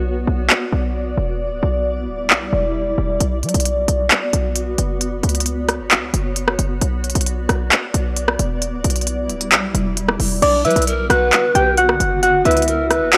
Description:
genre	hip hop, trap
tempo	133 BPM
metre	4/4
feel	half-time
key	B minor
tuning	A4 = 436 Hz
part	granular cloud pad	sustained chords	0.0-13.2 s	C#3 to D5	-26 LUFS	equal	built-in reverb
part	short 808-style bass	bass	0.0-13.2 s	D1 to F#3	-23 LUFS	equal	none
part	trap drum kit	drums	0.5-13.2 s	crash cymbal, handclaps, hi-hat, rim click	-20 LUFS	equal	overdrive
part	soft electric-piano-like synth keys	melody	10.4-13.2 s	D4 to G5	-18 LUFS	equal	chorus, phaser, low-pass filter
part	breathy polished pan flute	second line	10.6-13.2 s	A#4 to B4	-22 LUFS	equal	analog delay
room	light reverb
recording	dry, gritty hardware recording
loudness	-18 LUFS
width	mono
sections	0.0-10.4 A section; 10.4-13.2 B section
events	break 0.0-3.2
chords	0.0 Bm; 1.4 Em7; 3.2 Bm; 5.0 F#sus4; 6.8 Bm; 8.6 Em7; 10.4 Bm; 12.2 F#sus4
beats	0.05 0.50 0.95 | 1.40 1.85 2.30 2.75 | 3.21 3.66 4.11 4.56 | 5.01 5.46 5.91 6.36 | 6.81 7.26 7.72 8.17 | 8.62 9.07 9.52 9.97 | 10.42 10.87 11.32 11.78 | 12.23 12.68 13.13

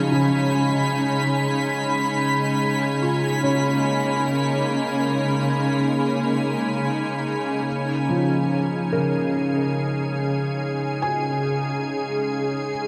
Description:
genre	ambient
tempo	72 BPM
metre	3/4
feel	straight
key	Db mixolydian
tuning	A4 = 440 Hz
part	soft additive organ-like pad	sustained chords	0.0-12.9 s	Db3 to Ab5	-26 LUFS	equal	ensemble chorus, built-in reverb, shimmer reverb
part	felt-muted upright piano	arpeggios	0.0-12.9 s	Db3 to Ab5	-29 LUFS	equal	shimmer reverb, diffuse ambient delay
part	muted chamber cello section	bass	0.0-7.6 s	Db3	-30 LUFS	equal	none
part	organ-like drone	drone	0.1-12.9 s	Db3 to Ab3	-33 LUFS	equal	ensemble chorus, built-in reverb
part	twinkling granular texture	texture	0.0-7.7 s	Cb6	-30 LUFS	equal	built-in reverb, shimmer reverb
room	wet huge ambient reverb, RT60 7.2 s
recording	none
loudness	-23 LUFS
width	mono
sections	0.0-7.7 A section; 7.7-12.9 B section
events	none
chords	0.0 Db9sus4; 2.6 Cbmaj9/Db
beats	| 0.12 0.94 1.77 | 2.61 3.44 4.28 | 5.12 5.97 6.81 | 7.67 8.52 9.36 | 10.20 11.04 11.87 | 12.70

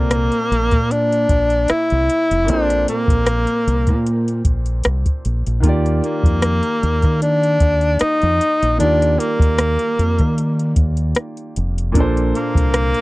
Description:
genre	R&B, neo-soul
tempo	76 BPM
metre	4/4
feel	swing 54% on 16ths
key	Eb lydian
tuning	A4 = 438 Hz
part	breathy tenor saxophone	melody	0.0-13.0 s	Bb3 to Fb4	-18 LUFS	equal	none
part	clear grand piano	accompaniment	0.0-13.0 s	Bb2 to Bb5	-24 LUFS	right 1 dB	none
part	deep dub fingered electric bass	bass	0.0-12.9 s	F1 to Eb3	-18 LUFS	equal	none
part	soft vintage rhythm box	drums	0.1-13.0 s	hi-hat, kick drum, rim click	-17 LUFS	equal	overdrive
room	little or no reverb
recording	dry, close 1970s-style studio recording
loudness	-15 LUFS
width	side -20 dB against mid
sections	0.0-13.0 A section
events	none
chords	0.0 Bbmaj9; 5.6 Ebmaj9; 11.9 Bbmaj9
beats	0.11 0.90 1.69 | 2.47 3.26 4.05 4.84 | 5.63 6.42 7.21 8.00 | 8.79 9.58 10.37 11.16 | 11.95 12.74

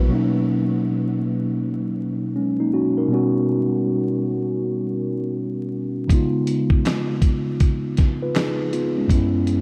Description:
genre	lo-fi hip hop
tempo	80 BPM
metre	4/4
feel	swing 64% on 16ths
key	B major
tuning	A4 = 442 Hz
part	mellow tine electric piano	accompaniment	0.0-9.6 s	F#2 to B4	-23 LUFS	equal	none
part	dusty soul sampler-style drum kit	drums	6.1-9.6 s	handclaps, hi-hat, kick drum, snare drum	-23 LUFS	equal	none
room	moderate huge ambient reverb, RT60 7.6 s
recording	dreamy mix soaked in reverb, vinyl crackle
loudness	-21 LUFS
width	mono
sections	0.1-9.6 A section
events	none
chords	0.1 Bmaj9; 3.1 D#7alt/B; 6.1 C#7; 9.1 F#7sus4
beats	| 0.10 0.85 1.60 2.35 | 3.10 3.85 4.60 5.35 | 6.10 6.85 7.60 8.35 | 9.10

